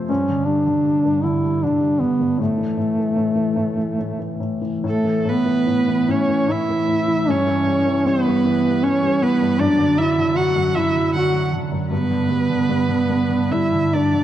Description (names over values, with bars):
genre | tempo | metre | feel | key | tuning
celtic folk, Celtic slow air | 70-79 BPM | 3/4 | rubato | A mixolydian | A4 = 440 Hz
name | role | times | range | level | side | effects
felt-muted upright piano | accompaniment | 0.0-14.2 s | F#2 to C4 | -22 LUFS | left 1 dB | none
dark duduk | melody | 0.1-14.2 s | A3 to F#4 | -19 LUFS | right 1 dB | none
clear viola | second line | 4.9-14.2 s | A4 to F#5 | -25 LUFS | right 2 dB | none
room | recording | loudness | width
moderate church reverb, RT60 2.7 s | dark, warm production, nothing above 10.7 kHz | -17 LUFS | side -11 dB against mid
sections
0.0-4.9 A section; 4.9-14.2 A section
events
none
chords
0.1 G5; 2.4 A5; 7.3 Em/G; 9.6 Dadd9/F#; 11.9 G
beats
| 0.10 0.86 1.63 | 2.40 3.18 4.00 | 4.85 5.68 6.49 | 7.28 8.07 8.85 | 9.61 10.37 11.15 | 11.92 12.71 13.54